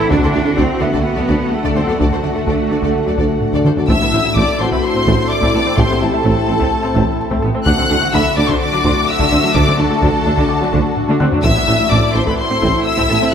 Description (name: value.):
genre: cinematic, hybrid orchestral and electronic film score.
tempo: 127 BPM.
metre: 4/4.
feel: straight.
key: A dorian.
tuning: A4 = 440 Hz.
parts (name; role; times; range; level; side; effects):
warm symphonic violin section; melody; 0.0-13.3 s; F#5 to F#6; -21 LUFS; left 3 dB; none.
clear symphonic violin section; second line; 0.0-13.3 s; A4 to F#5; -22 LUFS; left 3 dB; none.
warm symphonic viola section; accompaniment; 0.0-13.3 s; A3 to A4; -23 LUFS; right 2 dB; none.
deep dark ambient pad; sustained chords; 0.0-13.3 s; A3 to A4; -21 LUFS; left 1 dB; chorus, built-in reverb.
analog pluck; arpeggios; 0.0-13.3 s; D3 to A4; -24 LUFS; left 4 dB; chorus.
rich symphonic cello section; bass; 0.0-13.3 s; A2 to E4; -23 LUFS; right 2 dB; none.
rich symphonic double bass section; bass; 0.0-13.1 s; A1 to D2; -22 LUFS; right 3 dB; none.
mellow tuba; bass; 0.1-13.1 s; A1 to D2; -21 LUFS; right 3 dB; none.
taiko ensemble; drums; 0.1-13.3 s; none; -22 LUFS; left 1 dB; none.
felt-muted upright piano; texture; 0.8-13.3 s; F#4 to F#6; -28 LUFS; left 2 dB; none.
room: wet scoring stage reverb, RT60 1.9 s.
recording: none.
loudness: -12 LUFS.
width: side -8 dB against mid.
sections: 0.0-3.9 A section; 3.9-13.3 A section.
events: drum fill 3.4-3.9, 11.0-11.4.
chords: 0.1 D; 3.9 Am; 7.7 D; 11.4 Am.